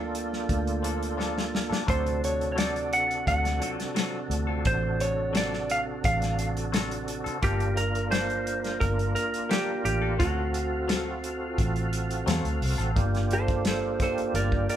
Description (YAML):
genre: straight-eighth soul blues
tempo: 87 BPM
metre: 4/4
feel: straight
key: unclear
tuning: A4 = 439 Hz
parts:
  - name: clean lap steel guitar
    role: melody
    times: 0.0-14.8 s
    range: F#4 to G5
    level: -28 LUFS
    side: right 1 dB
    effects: none
  - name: percussive tonewheel organ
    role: accompaniment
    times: 0.0-14.8 s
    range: C3 to E#5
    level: -32 LUFS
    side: right 2 dB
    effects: slow rotary speaker, overdrive, chorus vibrato
  - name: vintage muted fingered electric bass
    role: bass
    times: 0.0-14.7 s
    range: G1 to E2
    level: -30 LUFS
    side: equal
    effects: none
  - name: warm soul drum kit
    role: drums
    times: 0.1-14.8 s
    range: hi-hat, kick drum, snare drum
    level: -30 LUFS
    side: left 1 dB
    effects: none
  - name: direct-recorded clean electric guitar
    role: stabs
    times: 0.8-13.0 s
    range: F3 to A4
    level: -36 LUFS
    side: left 7 dB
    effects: phaser
room: light reverb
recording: band playing live in one room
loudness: -25 LUFS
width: side -10 dB against mid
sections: 0.0-13.0 A section; 13.0-14.8 B section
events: drum fill 1.2-1.9; electric slide guitar solo 13.0-14.8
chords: 0.0 Gm9; 1.9 D7#9; 7.4 Gm9; 10.2 D7#9; 13.0 Gm9